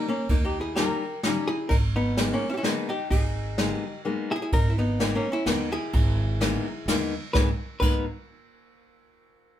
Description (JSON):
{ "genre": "musette waltz", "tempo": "128 BPM", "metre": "3/4", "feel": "swing 54% on 8ths", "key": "G# harmonic minor", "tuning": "A4 = 436 Hz", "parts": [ { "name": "hollow-body jazz guitar", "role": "melody", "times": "0.0-8.0 s", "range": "A#3 to B4", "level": "-29 LUFS", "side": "equal", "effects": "none" }, { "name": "fingerpicked steel-string acoustic guitar", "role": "accompaniment", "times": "0.0-8.0 s", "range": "G3 to D#4", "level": "-28 LUFS", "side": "left 4 dB", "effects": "none" }, { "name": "upright bass", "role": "bass", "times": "0.3-8.0 s", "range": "G#1 to D#2", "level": "-28 LUFS", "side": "right 1 dB", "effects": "none" }, { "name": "jazz brush drum kit", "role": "drums", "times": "0.3-7.9 s", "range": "crash cymbal, kick drum, ride cymbal, snare drum", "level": "-27 LUFS", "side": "right 1 dB", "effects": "none" } ], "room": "wet studio reverb, RT60 0.5 s", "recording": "band playing live in one room", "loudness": "-23 LUFS", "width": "side -11 dB against mid", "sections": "0.0-4.5 A section; 4.5-7.3 B section; 7.3-8.8 C section", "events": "none", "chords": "0.0 D#7; 1.7 G#madd9" }